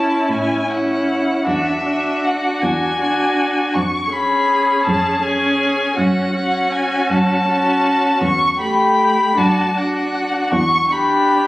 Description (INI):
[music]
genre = classical, slow romantic movement for string quartet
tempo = 53 BPM (dotted quarters)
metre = 6/8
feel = rubato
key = D major from 8.2 s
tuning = A4 = 440 Hz
[part]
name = muted violin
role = melody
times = 0.0-11.5 s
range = E5 to C#6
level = -18 LUFS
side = left 2 dB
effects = none
[part]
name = muted violin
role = second line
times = 0.0-11.5 s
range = E4 to G#4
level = -21 LUFS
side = equal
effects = none
[part]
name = muted viola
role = accompaniment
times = 0.0-11.5 s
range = A3 to D4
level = -21 LUFS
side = equal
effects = none
[part]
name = muted cello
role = bass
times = 0.0-11.5 s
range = E2 to A2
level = -22 LUFS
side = right 1 dB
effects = none
[sound]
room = moderate scoring stage reverb, RT60 1.5 s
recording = recorded on a phone in the room, club ambience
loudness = -15 LUFS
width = side -18 dB against mid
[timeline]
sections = 0.0-11.5 A section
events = none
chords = 0.0 A; 1.5 E9; 3.8 C#7/E#; 6.0 F#m; 8.2 A5/E; 9.4 D/F#; 10.5 Em7